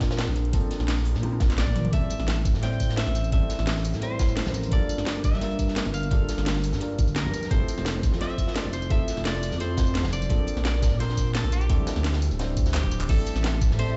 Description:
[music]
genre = liquid drum and bass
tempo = 172 BPM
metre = 4/4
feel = straight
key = G dorian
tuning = A4 = 440 Hz
[part]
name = dark grand piano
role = accompaniment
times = 0.0-14.0 s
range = F3 to C5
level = -36 LUFS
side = equal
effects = dub echo
[part]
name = smooth synth bass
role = bass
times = 0.0-13.9 s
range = D1 to Bb2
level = -29 LUFS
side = equal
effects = none
[part]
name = crunchy breakbeat drum kit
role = drums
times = 0.0-14.0 s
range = hi-hat, snare drum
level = -41 LUFS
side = equal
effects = high-pass filter on hats, high-pass filter on snare, high-pass filter on room
[part]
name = electronic kick drum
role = drums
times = 0.0-13.7 s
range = none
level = -26 LUFS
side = equal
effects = none
[part]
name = garage drum kit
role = drums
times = 0.0-13.9 s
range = crash cymbal, handclaps, hi-hat, snare drum, tambourine, toms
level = -34 LUFS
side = equal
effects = none
[part]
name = electric guitar at the edge of break-up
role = melody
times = 1.6-14.0 s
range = G4 to G5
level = -38 LUFS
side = equal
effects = dub echo
[part]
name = congas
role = percussion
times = 2.0-2.1, 4.5-4.9, 7.2-7.7, 10.0-13.1 s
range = none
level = -39 LUFS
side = equal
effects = none
[part]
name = rich studio string section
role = sustained chords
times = 13.1-14.0 s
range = G4 to A5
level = -42 LUFS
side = equal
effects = sidechain pumping
[sound]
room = little or no reverb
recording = played on a big sound system in a bare room, stone room reverb, nothing above 7.9 kHz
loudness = -25 LUFS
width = mono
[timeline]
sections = 0.0-13.1 A section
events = drop 0.0-13.1; drum fill 1.2-1.9, 12.7-13.1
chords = 0.0 Bbmaj9; 1.9 Am7; 4.7 Gm9; 7.5 Fmaj7; 10.3 Bbmaj9; 11.7 D9sus4; 13.1 Am7

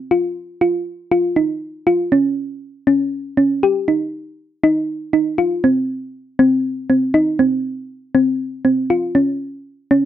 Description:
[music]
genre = progressive instrumental, progressive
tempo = 239 BPM (eighths)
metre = 7/8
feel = straight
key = Db lydian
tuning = A4 = 440 Hz
[part]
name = thumb-piano-like synth pluck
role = solo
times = 0.1-10.1 s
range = C4 to G4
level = -15 LUFS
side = equal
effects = chorus
[sound]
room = little or no reverb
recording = dry, close 1970s-style studio recording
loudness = -16 LUFS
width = side -11 dB against mid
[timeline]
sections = 0.0-1.9 A section; 1.9-10.1 B section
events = none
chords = none

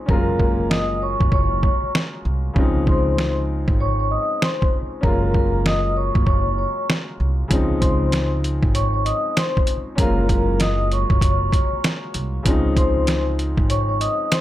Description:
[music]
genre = hip hop, boom-bap hip-hop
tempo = 97 BPM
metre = 4/4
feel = swing 62% on 16ths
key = Db major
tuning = A4 = 440 Hz
[part]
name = warm concert grand piano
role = accompaniment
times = 0.0-14.4 s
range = Db3 to F4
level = -25 LUFS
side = left 2 dB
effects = cassette tape, high-pass filter, low-pass filter
[part]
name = vibraphone with soft mallets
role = melody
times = 0.1-14.4 s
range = Bb4 to Eb6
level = -24 LUFS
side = left 1 dB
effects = high-pass filter, low-pass filter, tape echo
[part]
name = upright bass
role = bass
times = 0.1-14.1 s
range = Gb1 to Db2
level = -22 LUFS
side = equal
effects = none
[part]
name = trip hop sampler-style drum kit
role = drums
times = 0.1-14.4 s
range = hi-hat, kick drum, snare drum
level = -20 LUFS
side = equal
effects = overdrive
[sound]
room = light reverb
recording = none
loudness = -17 LUFS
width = side -14 dB against mid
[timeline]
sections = 0.0-14.4 A section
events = break 0.0-7.5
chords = 0.1 Gbmaj9; 2.6 Dbmaj7; 5.0 Gbmaj9; 7.5 Dbmaj7; 10.0 Gbmaj9; 12.5 Dbmaj7

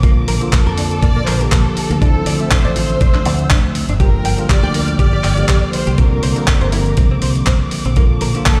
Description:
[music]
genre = nu-disco, nu disco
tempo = 121 BPM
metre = 4/4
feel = swing 55% on 16ths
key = unclear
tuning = A4 = 440 Hz
[part]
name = bell-like tine electric piano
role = accompaniment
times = 0.0-8.6 s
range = D3 to E5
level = -23 LUFS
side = equal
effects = sidechain pumping
[part]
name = dark studio string section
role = sustained chords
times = 0.0-8.6 s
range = C5 to F6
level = -32 LUFS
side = equal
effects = sidechain pumping
[part]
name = direct-recorded clean electric guitar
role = riff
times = 0.0-8.5 s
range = Bb3 to G5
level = -29 LUFS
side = equal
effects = lush chorus
[part]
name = fingered electric bass with an envelope filter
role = bass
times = 0.0-8.3 s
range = G1 to F2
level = -20 LUFS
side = equal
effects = none
[part]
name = dusty soul sampler-style drum kit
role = drums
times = 0.0-8.6 s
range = handclaps, hi-hat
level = -24 LUFS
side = equal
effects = none
[part]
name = electronic kick drum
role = drums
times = 0.0-8.6 s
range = none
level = -15 LUFS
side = equal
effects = none
[part]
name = rich studio violin section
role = melody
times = 0.5-8.6 s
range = A4 to D5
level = -27 LUFS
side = equal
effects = dub echo
[sound]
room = little or no reverb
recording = played on a big sound system in a bare room, large studio reverb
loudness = -15 LUFS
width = mono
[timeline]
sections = 0.0-8.6 A section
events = none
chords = 0.0 Bbmaj7; 2.0 Dm9; 4.0 Gm7; 6.0 C9sus4; 8.0 Bbmaj7

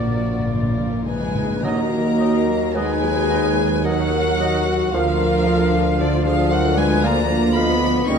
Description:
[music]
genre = classical, slow romantic movement for symphony orchestra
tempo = 51-58 BPM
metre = 3/4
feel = rubato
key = Eb minor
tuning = A4 = 440 Hz
[part]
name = warm chamber violin section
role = melody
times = 0.0-8.2 s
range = Bb4 to Db6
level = -26 LUFS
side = left 2 dB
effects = none
[part]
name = dark chamber violin section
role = second line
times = 0.0-8.2 s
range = D4 to Db5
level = -29 LUFS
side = left 7 dB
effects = none
[part]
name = mellow hollow silver concert flute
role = second line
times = 0.0-8.2 s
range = F4 to G5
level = -27 LUFS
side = left 1 dB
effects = none
[part]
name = warm oboe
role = second line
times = 0.0-8.2 s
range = D5 to F5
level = -36 LUFS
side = right 1 dB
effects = none
[part]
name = dark symphonic viola section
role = accompaniment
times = 0.0-8.2 s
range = D3 to Gb4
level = -27 LUFS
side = right 2 dB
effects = none
[part]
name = warm studio double bass section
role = bass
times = 0.0-8.2 s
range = Bb1 to Eb2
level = -26 LUFS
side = right 2 dB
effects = none
[part]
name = warm symphonic cello section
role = bass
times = 0.0-8.2 s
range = Bb2 to Db4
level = -23 LUFS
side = right 3 dB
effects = none
[part]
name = timpani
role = percussion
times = 0.0-3.3 s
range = Bb2 to Eb3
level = -26 LUFS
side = left 2 dB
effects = none
[part]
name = warm bassoon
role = accompaniment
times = 1.6-8.2 s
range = F3 to G3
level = -31 LUFS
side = right 2 dB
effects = none
[part]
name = mellow French horn section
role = sustained chords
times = 1.6-8.2 s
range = D4 to Bb4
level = -25 LUFS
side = left 8 dB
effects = none
[part]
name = warm trombone section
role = sustained chords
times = 1.6-8.2 s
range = F3 to F4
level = -29 LUFS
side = right 1 dB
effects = none
[part]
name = warm tuba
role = bass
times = 1.6-8.2 s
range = Db2 to Eb2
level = -26 LUFS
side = right 4 dB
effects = none
[sound]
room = moderate scoring stage reverb, RT60 2.1 s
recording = dark, warm production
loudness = -16 LUFS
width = side -6 dB against mid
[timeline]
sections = 0.0-1.6 A section; 1.6-8.2 B section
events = timpani fill 0.0-1.6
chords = 0.0 Bb; 1.6 Ebm; 4.9 Bb/D

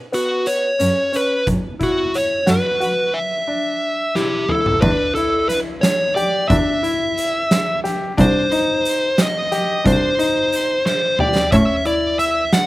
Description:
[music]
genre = progressive instrumental, band music in an uneven meter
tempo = 179 BPM (eighths)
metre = 5/8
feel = straight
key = unclear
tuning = A4 = 439 Hz
[part]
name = dark smooth lead guitar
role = melody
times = 0.1-12.7 s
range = F#4 to F#5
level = -18 LUFS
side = equal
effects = overdrive
[part]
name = clear grand piano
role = arpeggios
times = 0.1-12.4 s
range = B3 to G4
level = -22 LUFS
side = left 2 dB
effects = slapback echo
[part]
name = oversized low-tuned drum kit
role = drums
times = 0.1-12.7 s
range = crash cymbal, hi-hat, kick drum, snare drum, toms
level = -22 LUFS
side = right 1 dB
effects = none
[part]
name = dark cello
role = bass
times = 0.8-11.6 s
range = C2 to A2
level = -17 LUFS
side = equal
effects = none
[sound]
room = little or no reverb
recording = none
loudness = -15 LUFS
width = side -17 dB against mid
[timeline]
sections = 0.0-4.8 A section; 4.8-12.7 B section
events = drum fill 4.2-4.8, 10.9-11.5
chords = 0.0 Bsus2; 1.5 F#sus4; 3.2 Dsus24; 4.8 Em; 8.2 Cm; 11.5 A (rootless)

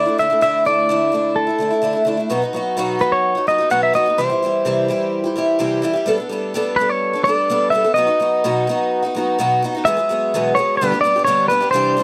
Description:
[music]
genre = rock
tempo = 127 BPM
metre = 4/4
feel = straight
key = unclear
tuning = A4 = 439 Hz
[part]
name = clean electric guitar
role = melody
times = 0.0-12.0 s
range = A4 to F#5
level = -19 LUFS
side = equal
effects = none
[part]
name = picked twelve-string acoustic guitar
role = accompaniment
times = 0.0-12.0 s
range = E2 to A4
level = -22 LUFS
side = equal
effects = none
[sound]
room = little or no reverb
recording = dry, close 1970s-style studio recording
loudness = -18 LUFS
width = mono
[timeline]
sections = 0.0-2.3 A section; 2.3-9.8 B section; 9.8-12.0 C section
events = none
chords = 0.0 Dsus2; 2.3 B; 4.2 C; 6.1 Gadd9; 8.0 B; 9.8 Eadd9; 10.8 G

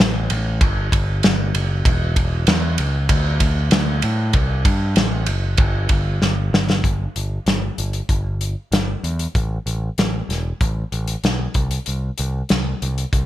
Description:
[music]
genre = indie rock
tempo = 96 BPM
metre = 4/4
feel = straight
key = unclear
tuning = A4 = 440 Hz
[part]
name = picked electric bass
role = bass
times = 0.0-13.3 s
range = E1 to A2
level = -21 LUFS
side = equal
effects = none
[part]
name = loose indie drum kit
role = drums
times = 0.0-13.3 s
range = hi-hat, kick drum, ride cymbal, snare drum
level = -19 LUFS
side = equal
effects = none
[sound]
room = light reverb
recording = bright 1980s-style digital production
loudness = -17 LUFS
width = side -14 dB against mid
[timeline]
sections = 0.0-6.8 A section; 6.8-13.3 B section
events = drum fill 6.2-6.8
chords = none

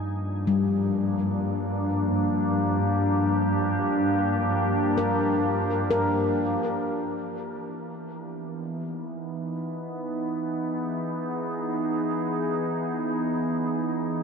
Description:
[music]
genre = ambient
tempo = free time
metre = none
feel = none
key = unclear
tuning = A4 = 441 Hz
[part]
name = evolving wavetable pad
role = sustained chords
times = 0.0-14.2 s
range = E3 to G#4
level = -26 LUFS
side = equal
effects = chorus, built-in reverb
[part]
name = warm studio double bass section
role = bass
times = 0.0-7.0 s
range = G2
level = -29 LUFS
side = equal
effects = none
[part]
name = handpan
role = arpeggios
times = 0.5-8.1 s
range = G3 to Bb4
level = -29 LUFS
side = left 3 dB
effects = diffuse ambient delay
[sound]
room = moderate huge ambient reverb, RT60 8.9 s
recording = none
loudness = -24 LUFS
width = side -6 dB against mid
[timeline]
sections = 0.0-7.1 A section; 7.1-14.2 B section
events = none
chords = 0.0 Gm7; 7.1 Emaj7

